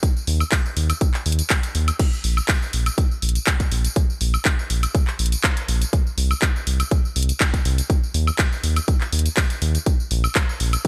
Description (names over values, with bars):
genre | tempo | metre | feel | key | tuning
deep house | 122 BPM | 4/4 | swing 53% on 16ths | unclear | A4 = 440 Hz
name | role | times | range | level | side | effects
electronic kick drum | drums | 0.0-10.9 s | none | -22 LUFS | equal | none
house drum kit | drums | 0.0-10.9 s | crash cymbal, handclaps, hi-hat, tambourine, woodblock | -27 LUFS | equal | none
round analog bass | bass | 0.3-10.8 s | Bb1 to Eb2 | -22 LUFS | equal | sidechain pumping
room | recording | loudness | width
little or no reverb | bright 1980s-style digital production | -21 LUFS | mono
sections
0.0-10.9 A section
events
none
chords
none